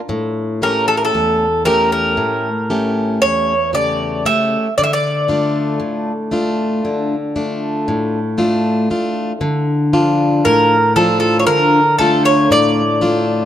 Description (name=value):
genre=greek folk, Greek bouzouki band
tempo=116 BPM (eighths)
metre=9/8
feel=straight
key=D harmonic minor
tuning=A4 = 439 Hz
part: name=picked plugged-in steel-string acoustic guitar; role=accompaniment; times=0.1-13.5 s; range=E2 to G4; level=-16 LUFS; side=left 1 dB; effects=none
part: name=Greek bouzouki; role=melody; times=0.6-13.5 s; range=A4 to E5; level=-15 LUFS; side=right 1 dB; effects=none
room=moderate plate reverb, RT60 3.6 s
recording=none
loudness=-13 LUFS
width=side -10 dB against mid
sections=0.0-9.4 A section; 9.4-13.5 B section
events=none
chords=0.1 A7; 4.8 Dm